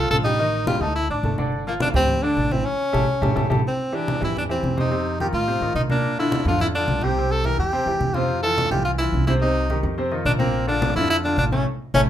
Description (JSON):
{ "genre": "latin, salsa", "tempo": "213 BPM", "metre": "4/4", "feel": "straight", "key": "unclear", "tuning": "A4 = 440 Hz", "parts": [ { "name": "clear tenor saxophone", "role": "melody", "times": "0.0-12.0 s", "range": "Bb3 to Bb4", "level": "-23 LUFS", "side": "equal", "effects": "none" }, { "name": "clear concert grand piano", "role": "accompaniment", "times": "0.0-12.0 s", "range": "A2 to D6", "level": "-26 LUFS", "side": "equal", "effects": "none" }, { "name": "upright bass", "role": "bass", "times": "0.0-12.0 s", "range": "G1 to Bb2", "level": "-26 LUFS", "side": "equal", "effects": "none" }, { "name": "congas", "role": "percussion", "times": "0.1-12.0 s", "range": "none", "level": "-26 LUFS", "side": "equal", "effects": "none" } ], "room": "moderate studio reverb, RT60 0.5 s", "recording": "minimal, uncompressed stereo recording", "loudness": "-19 LUFS", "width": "side -11 dB against mid", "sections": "0.0-3.8 A section; 3.8-12.1 B section", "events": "drum fill 2.7-3.8, 11.9; band accent 2.7-3.8, 11.7-12.1", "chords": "0.4 F13/A; 1.0 D5; 1.5 G5; 2.7 A7; 3.8 C; 4.9 F7; 6.0 Bb; 7.2 C; 8.3 Fmaj7; 9.4 Cm; 10.0 F5; 10.5 Bbmaj7" }